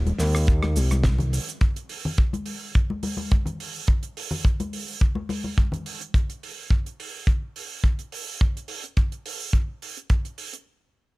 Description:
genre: nu-disco, nu disco.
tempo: 106 BPM.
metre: 4/4.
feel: swing 54% on 16ths.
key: unclear.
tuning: A4 = 435 Hz.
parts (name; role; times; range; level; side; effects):
fat analog bass; bass; 0.0-1.4 s; Eb1 to Eb2; -21 LUFS; equal; none.
damped 70s drum kit; drums; 0.1-10.6 s; cabasa, hi-hat, rim click, snare drum; -32 LUFS; right 4 dB; small room ambience.
congas; percussion; 0.1-5.8 s; none; -31 LUFS; left 2 dB; none.
kick drum; drums; 0.5-10.2 s; none; -20 LUFS; equal; small room ambience.
room: small room reverb.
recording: none.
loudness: -22 LUFS.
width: side -22 dB against mid.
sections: 0.0-10.7 A section.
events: none.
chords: none.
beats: 0.48 1.04 | 1.61 2.18 2.74 3.31 | 3.88 4.44 5.01 5.57 | 6.14 6.71 7.27 7.84 | 8.40 8.97 9.54 10.10.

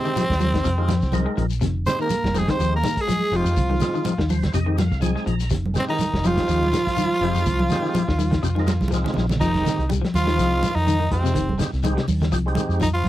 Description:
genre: afrobeat.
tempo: 123 BPM.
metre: 4/4.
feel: swing 55% on 16ths.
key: F minor.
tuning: A4 = 440 Hz.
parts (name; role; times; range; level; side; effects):
raspy tenor saxophone; melody; 0.0-13.1 s; C4 to C5; -25 LUFS; equal; none.
bright alto saxophone; second line; 0.0-13.1 s; C4 to C5; -32 LUFS; right 3 dB; none.
warm bass trombone; second line; 0.0-13.1 s; C3 to C4; -32 LUFS; right 7 dB; none.
percussive tonewheel organ; accompaniment; 0.0-12.8 s; Ab3 to Bb5; -29 LUFS; right 2 dB; slow rotary speaker.
electric guitar at the edge of break-up; arpeggios; 0.0-12.9 s; C3 to Ab3; -26 LUFS; left 5 dB; wide subtle chorus.
shekere; percussion; 0.0-13.1 s; none; -32 LUFS; left 6 dB; none.
hollow-body short-scale fingered electric bass; bass; 0.2-13.1 s; F1 to F2; -23 LUFS; equal; none.
vintage drum kit; drums; 0.2-13.1 s; crash cymbal, hi-hat, kick drum, snare drum; -28 LUFS; equal; none.
congas; percussion; 0.2-13.1 s; none; -28 LUFS; right 3 dB; none.
room: little or no reverb.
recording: dry, close 1970s-style studio recording.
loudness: -19 LUFS.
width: side -14 dB against mid.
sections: 0.0-9.4 A section; 9.4-13.1 B section.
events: tonewheel organ fill 4.1-5.5; drum fill 8.8-9.4.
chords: 0.0 Fm7.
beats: 0.16 0.64 1.13 | 1.61 2.10 2.59 3.08 | 3.56 4.05 4.54 5.03 | 5.51 6.00 6.49 6.98 | 7.46 7.95 8.44 8.93 | 9.41 9.90 10.38 10.87 | 11.36 11.84 12.33 12.81.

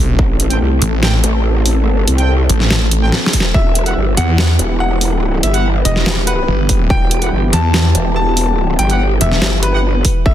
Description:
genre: heavy wobble dubstep.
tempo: 143 BPM.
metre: 4/4.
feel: half-time.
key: E minor.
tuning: A4 = 440 Hz.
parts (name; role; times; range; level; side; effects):
supersaw pad; sustained chords; 0.0-10.3 s; E3 to A4; -22 LUFS; right 1 dB; sidechain pumping, low-pass filter.
snarling distorted saw bass; bass; 0.0-9.4 s; E1 to E2; -14 LUFS; equal; distortion, overdrive.
growl bass; bass; 0.2-10.3 s; E1 to C2; -15 LUFS; equal; chorus, overdrive.
electronic kick drum; drums; 0.2-0.3, 3.3-3.6, 6.7-7.0, 10.0-10.3 s; none; -14 LUFS; equal; overdrive.
dubstep drum kit; drums; 0.4-10.1 s; hi-hat, snare drum; -17 LUFS; equal; overdrive.
bright brass ensemble; stabs; 0.5-9.8 s; C4 to G5; -26 LUFS; right 2 dB; ping-pong delay.
bright concert grand piano; melody; 3.5-10.3 s; B4 to A5; -21 LUFS; left 3 dB; ping-pong delay.
room: little or no reverb.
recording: dense, heavily limited modern master.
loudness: -12 LUFS.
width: side -11 dB against mid.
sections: 0.0-10.3 A section.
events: drum fill 3.1-3.5.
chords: 0.0 Am7; 3.5 Em.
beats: | 0.19 0.61 1.03 1.45 | 1.87 2.29 2.71 3.12 | 3.54 3.96 4.38 4.80 | 5.22 5.64 6.06 6.48 | 6.90 7.32 7.74 8.16 | 8.58 9.00 9.42 9.84 | 10.26.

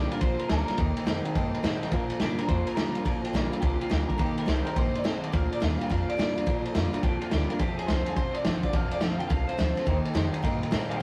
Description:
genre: rockabilly.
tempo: 211 BPM.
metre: 4/4.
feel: swing 65% on 8ths.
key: Bb major.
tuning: A4 = 440 Hz.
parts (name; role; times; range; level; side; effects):
electric guitar through a small old amp; melody; 0.0-11.0 s; F4 to G5; -36 LUFS; equal; none.
dark upright piano; accompaniment; 0.0-11.0 s; C5 to C6; -42 LUFS; equal; none.
picked steel-string acoustic guitar; accompaniment; 0.0-11.0 s; F2 to G4; -37 LUFS; equal; none.
electric guitar through a small old amp; riff; 0.0-11.0 s; F2 to C4; -35 LUFS; equal; spring reverb.
upright bass; bass; 0.0-10.9 s; F1 to Bb2; -34 LUFS; equal; none.
vintage drum kit; drums; 0.1-11.0 s; kick drum, ride cymbal, snare drum; -32 LUFS; equal; none.
room: moderate stone room reverb, RT60 1.1 s.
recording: rough rehearsal-room recording, warm saturation.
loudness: -27 LUFS.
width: mono.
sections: 0.0-11.0 A section.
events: none.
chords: 0.0 Bb; 0.8 Eb; 1.9 Bb; 4.2 Eb; 5.3 Bb; 7.6 F; 9.9 Eb.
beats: 0.22 0.50 | 0.79 1.07 1.35 1.64 | 1.92 2.21 2.49 2.77 | 3.06 3.34 3.63 3.91 | 4.20 4.48 4.76 5.05 | 5.33 5.62 5.90 6.18 | 6.47 6.75 7.04 7.32 | 7.60 7.89 8.17 8.46 | 8.74 9.02 9.31 9.59 | 9.88 10.16 10.44 10.73 | 11.01.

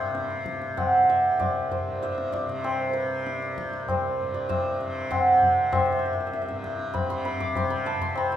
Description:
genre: indian classical, Hindustani.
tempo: 97 BPM.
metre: 5/4.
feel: straight.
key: C raga yaman.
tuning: A4 = 441 Hz.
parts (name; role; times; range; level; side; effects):
santur; melody; 0.0-8.4 s; B4 to D6; -25 LUFS; right 1 dB; none.
tanpura; drone; 0.0-8.4 s; C2 to C3; -32 LUFS; equal; none.
tabla; percussion; 0.1-8.4 s; none; -29 LUFS; left 2 dB; none.
room: moderate concert hall reverb, RT60 1.8 s.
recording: minimal, uncompressed stereo recording.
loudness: -23 LUFS.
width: side -11 dB against mid.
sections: 0.0-8.4 A section.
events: speeding up 0.0-8.4.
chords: none.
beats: 0.14 0.77 1.40 2.03 | 2.65 3.27 3.89 4.51 5.12 | 5.73 6.34 6.95 7.55 8.16.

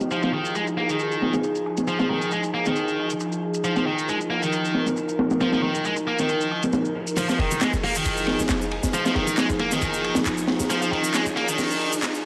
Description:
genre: breakbeat, breaks.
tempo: 136 BPM.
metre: 4/4.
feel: swing 55% on 16ths.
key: unclear.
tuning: A4 = 440 Hz.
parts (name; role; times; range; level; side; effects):
warbly tape-like pad; sustained chords; 0.0-12.3 s; F3 to Bb4; -30 LUFS; equal; chorus, built-in reverb, sidechain pumping.
crunchy breakbeat drum kit; drums; 0.0-12.1 s; hi-hat, kick drum, ride cymbal, snare drum; -29 LUFS; equal; high-pass filter on kick, low-pass filter on kick, high-pass filter on cymbals, low-pass filter on cymbals, high-pass filter on hats, low-pass filter on hats, high-pass filter on snare, low-pass filter on snare, high-pass filter on room, low-pass filter on room.
electronic shaker and handclaps; drums; 0.0-12.2 s; none; -34 LUFS; equal; low-pass filter on perc, low-pass filter on snare, low-pass filter on room.
tight distorted guitar; riff; 0.1-11.9 s; Eb3 to Bb3; -28 LUFS; equal; distortion, overdrive, low-pass filter, analog delay.
riser; sound effects; 9.0-12.3 s; none; -38 LUFS; equal; none.
warm 808-style bass; bass; 7.4-12.3 s; F1; -32 LUFS; equal; none.
room: light reverb, small room ambience.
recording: dry, gritty hardware recording, transformer saturation, vinyl crackle, high-pass filter.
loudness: -24 LUFS.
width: mono.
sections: 0.0-7.2 A section; 7.2-12.3 B section.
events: build-up 7.2-12.3; drum fill 10.7-12.3.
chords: 0.0 Fm7.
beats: | 0.11 0.56 1.00 1.44 | 1.88 2.32 2.76 3.20 | 3.64 4.08 4.53 4.97 | 5.41 5.85 6.29 6.73 | 7.17 7.61 8.06 8.50 | 8.94 9.38 9.82 10.26 | 10.70 11.14 11.59 12.03.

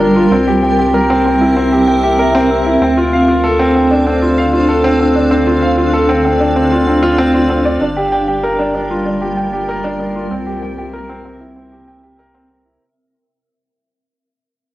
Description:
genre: piano and strings electronica.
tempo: 96 BPM.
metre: 4/4.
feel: straight.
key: unclear.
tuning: A4 = 441 Hz.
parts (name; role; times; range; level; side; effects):
granular cloud pad; sustained chords; 0.0-12.8 s; G3 to F5; -17 LUFS; equal; built-in reverb, cassette tape.
warm concert grand piano; riff; 0.0-12.8 s; C4 to G5; -13 LUFS; equal; cassette tape, tape echo.
round analog bass; bass; 0.0-12.8 s; G1 to D2; -22 LUFS; equal; none.
room: wet studio ambience, RT60 0.5 s.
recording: home recording on cassette.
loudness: -11 LUFS.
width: side -16 dB against mid.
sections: 0.0-7.8 A section; 7.8-12.8 B section.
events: drop 0.0-7.8; fade-out 7.8-12.8; filter sweep on ambient pad 7.8-12.8.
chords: 0.3 C7; 2.8 Dm7; 7.8 Gm7; 10.3 C7.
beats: | 0.31 0.94 1.56 2.19 | 2.81 3.44 4.06 4.69 | 5.31 5.94 6.56 7.19 | 7.81 8.44 9.06 9.69 | 10.31 10.94 11.56 12.19.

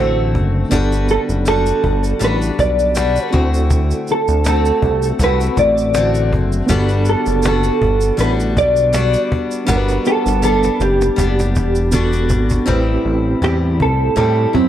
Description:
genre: indie pop, bedroom pop.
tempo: 80 BPM.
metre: 4/4.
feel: swing 55% on 16ths.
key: unclear.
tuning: A4 = 440 Hz.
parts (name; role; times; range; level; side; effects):
mellow electric guitar; melody; 0.0-14.6 s; C4 to D5; -18 LUFS; right 1 dB; analog chorus, slapback echo.
mellow reed electric piano; accompaniment; 0.0-14.7 s; B3 to F#5; -24 LUFS; right 3 dB; fast tremolo.
picked steel-string acoustic guitar; accompaniment; 0.0-14.7 s; A2 to B4; -21 LUFS; left 4 dB; lush chorus, vibrato effect.
fat analog bass; bass; 0.0-14.7 s; E1 to A2; -17 LUFS; equal; none.
cajon; drums; 0.2-14.7 s; none; -21 LUFS; equal; none.
egg shaker; percussion; 0.7-12.7 s; none; -32 LUFS; right 6 dB; none.
room: small room ambience.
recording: dark, warm production.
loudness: -13 LUFS.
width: side -11 dB against mid.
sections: 0.0-12.7 A section; 12.7-14.7 B section.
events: drum fill 9.7-12.7; clean electric guitar solo 12.7-14.7.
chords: 0.0 D7; 0.7 Gmaj7; 3.3 D7; 6.7 Gmaj7; 12.7 Am7.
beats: | 0.72 1.47 2.21 2.96 | 3.71 4.46 5.20 5.95 | 6.70 7.44 8.19 8.94 | 9.69 10.43 11.18 11.93 | 12.68 13.42 14.17.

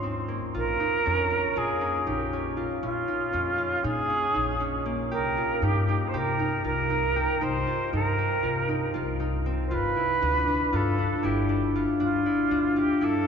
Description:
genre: progressive instrumental, band music in an uneven meter.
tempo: 236 BPM (eighths).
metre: 9/8.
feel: straight.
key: Bb dorian.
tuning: A4 = 440 Hz.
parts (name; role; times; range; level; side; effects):
concert harp; arpeggios; 0.0-13.3 s; Bb3 to G4; -28 LUFS; left 1 dB; none.
upright bass; bass; 0.0-13.3 s; G1 to C3; -30 LUFS; left 1 dB; none.
silver concert flute; melody; 0.6-13.3 s; F4 to C5; -27 LUFS; right 2 dB; none.
room: wet cathedral reverb, RT60 5.1 s.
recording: recorded in a church or concert hall, nothing above 7.9 kHz.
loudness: -24 LUFS.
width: side -6 dB against mid.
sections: 0.5-13.3 A section.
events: none.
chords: 0.0 Abmaj7; 0.5 Bbm7; 5.1 Cm7; 9.7 G7.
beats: 0.04 0.29 | 0.55 0.80 1.05 1.31 1.56 1.82 2.07 2.33 2.58 | 2.83 3.09 3.34 3.60 3.85 4.11 4.36 4.61 4.87 | 5.12 5.38 5.63 5.89 6.14 6.40 6.65 6.91 7.16 | 7.42 7.67 7.92 8.18 8.43 8.69 8.94 9.20 9.45 | 9.71 9.96 10.22 10.47 10.73 10.98 11.24 11.49 11.75 | 12.00 12.26 12.51 12.77 13.02.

